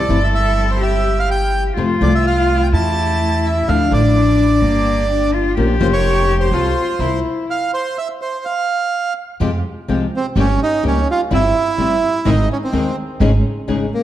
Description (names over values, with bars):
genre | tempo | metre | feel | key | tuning
tango | 126 BPM | 4/4 | rubato | F minor from 9.4 s | A4 = 440 Hz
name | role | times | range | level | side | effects
bandoneon | melody | 0.0-14.0 s | Bb3 to A5 | -19 LUFS | right 4 dB | analog delay
warm cello | second line | 0.0-7.5 s | Bb3 to A4 | -19 LUFS | left 5 dB | none
flamenco guitar | accompaniment | 0.0-5.9, 9.4-13.9 s | C3 to C5 | -20 LUFS | left 4 dB | none
bright symphonic string section | stabs | 0.0-13.9 s | F3 to Bb4 | -29 LUFS | right 2 dB | none
upright bass | bass | 0.0-13.9 s | F1 to F2 | -18 LUFS | right 1 dB | none
room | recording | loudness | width
wet recital hall reverb, RT60 1.5 s | dark, warm production | -14 LUFS | side -12 dB against mid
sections
0.0-9.4 A section; 9.4-14.0 B section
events
stop 7.5-9.4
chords
0.0 C; 1.8 F; 2.7 A7/E; 3.7 Dmadd9; 4.6 Gm; 5.6 Bbmadd9; 6.5 F/C; 7.0 C7; 7.5 N.C.; 9.4 Fmadd9; 10.4 Gdim; 11.3 C/G; 12.3 Ab; 13.2 Dbsus2/Ab